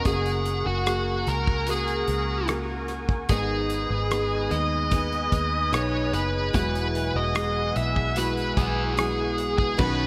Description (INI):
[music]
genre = pop ballad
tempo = 74 BPM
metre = 4/4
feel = straight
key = unclear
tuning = A4 = 436 Hz
[part]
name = high-gain lead guitar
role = melody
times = 0.0-10.1 s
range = F#4 to E5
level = -30 LUFS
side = equal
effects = distortion
[part]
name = felt-muted upright piano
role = accompaniment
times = 0.0-10.1 s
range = G#2 to B4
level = -33 LUFS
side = equal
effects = analog chorus
[part]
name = sweeping resonant pad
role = sustained chords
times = 0.0-10.1 s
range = A#4 to D#6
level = -37 LUFS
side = equal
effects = chorus
[part]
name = vintage muted fingered electric bass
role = bass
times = 0.0-10.1 s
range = E1 to D#2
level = -32 LUFS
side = equal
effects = none
[part]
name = loose indie drum kit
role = drums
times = 0.1-10.0 s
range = crash cymbal, hi-hat, kick drum, rim click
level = -31 LUFS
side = equal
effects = none
[part]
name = picked steel-string acoustic guitar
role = arpeggios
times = 3.3-10.1 s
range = G#2 to B4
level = -38 LUFS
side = equal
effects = lush chorus, delay
[sound]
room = moderate lush hall reverb, RT60 2.7 s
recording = bright 1980s-style digital production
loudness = -25 LUFS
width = mono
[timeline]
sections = 0.0-9.8 A section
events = none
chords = 0.1 F#add9; 3.3 G#m; 6.5 Eadd9